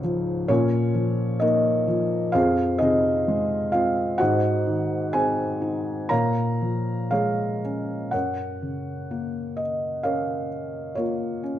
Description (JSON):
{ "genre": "classical, lyrical solo piano", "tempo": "58-66 BPM", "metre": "4/4", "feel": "rubato", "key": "Bb minor", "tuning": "A4 = 441 Hz", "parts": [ { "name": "felt-muted upright piano", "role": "solo", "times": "0.0-11.6 s", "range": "Db2 to Bb5", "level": "-22 LUFS", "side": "equal", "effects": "none" } ], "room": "moderate recital hall reverb, RT60 1.3 s", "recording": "dark, warm production", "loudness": "-22 LUFS", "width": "side -11 dB against mid", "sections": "0.0-8.1 A section; 8.1-11.6 B section", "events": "none", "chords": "0.5 Bbm; 2.3 Fm7; 4.2 Ab7; 6.1 Bbm7; 8.1 Gbmaj7" }